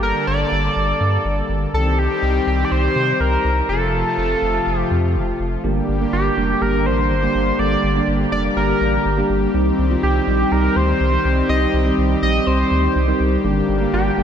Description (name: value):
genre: synth-pop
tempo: 123 BPM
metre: 4/4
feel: straight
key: G minor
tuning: A4 = 440 Hz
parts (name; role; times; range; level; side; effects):
- octave-doubled lead; melody; 0.0-14.2 s; G4 to Eb5; -21 LUFS; equal; chorus, analog delay
- brassy analog pad; sustained chords; 0.0-14.2 s; C3 to A4; -22 LUFS; left 2 dB; chorus
- round analog bass; bass; 0.0-14.2 s; F1 to C3; -21 LUFS; equal; none
- tine electric piano; accompaniment; 5.6-14.2 s; G3 to Bb4; -21 LUFS; right 3 dB; wide subtle chorus
room: wet lush hall reverb, RT60 2.9 s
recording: dreamy mix soaked in reverb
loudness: -16 LUFS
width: side -8 dB against mid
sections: 0.0-5.6 A section; 5.6-14.2 B section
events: none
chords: 0.0 Gm; 1.7 Cm; 3.7 F; 5.6 Gm; 9.5 Cm; 13.4 Gm